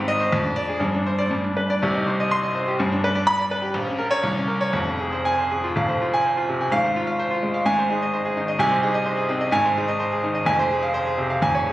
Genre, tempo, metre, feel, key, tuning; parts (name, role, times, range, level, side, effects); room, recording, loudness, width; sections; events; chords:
classical, virtuoso piano study; 114-131 BPM; 2/4; rubato; F minor from 3.7 s; A4 = 437 Hz
clear concert grand piano; solo; 0.0-11.7 s; F1 to C6; -20 LUFS; equal
moderate recital hall reverb, RT60 1.5 s; recorded on a phone in the room, studio reverb, compression; -20 LUFS; side -15 dB against mid
0.0-5.8 A section; 5.8-11.7 B section
0.3 Ddim/F; 0.8 Gsus4; 1.3 G; 1.8 Cm; 2.8 G; 3.7 Bbm; 4.2 Bbmadd9/C; 4.7 Fm; 6.7 Fm/Ab; 7.7 Ab; 8.6 Ab/C; 9.5 Ab; 10.5 Fm